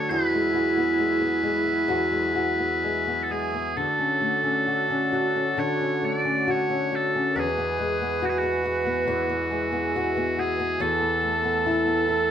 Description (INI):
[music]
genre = celtic folk, Celtic slow air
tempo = 62-72 BPM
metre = 4/4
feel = rubato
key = E mixolydian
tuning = A4 = 440 Hz
[part]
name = loud bright bagpipes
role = melody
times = 0.0-12.3 s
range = F#4 to D5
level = -26 LUFS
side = left 1 dB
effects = none
[part]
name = baroque flute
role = second line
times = 0.0-12.3 s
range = E4 to B4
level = -28 LUFS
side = right 4 dB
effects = none
[part]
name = nylon-string guitar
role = accompaniment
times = 0.0-12.3 s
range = E2 to F#4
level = -27 LUFS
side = left 3 dB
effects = none
[part]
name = pedal harmonium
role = sustained chords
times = 0.0-12.3 s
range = D3 to A4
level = -34 LUFS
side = right 3 dB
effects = none
[sound]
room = wet large studio reverb, RT60 1.3 s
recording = band playing live in one room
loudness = -22 LUFS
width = side -9 dB against mid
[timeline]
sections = 0.0-3.8 A section; 3.8-12.3 B section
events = none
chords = 0.1 Eadd9; 3.8 Dmaj7; 10.8 Asus2/E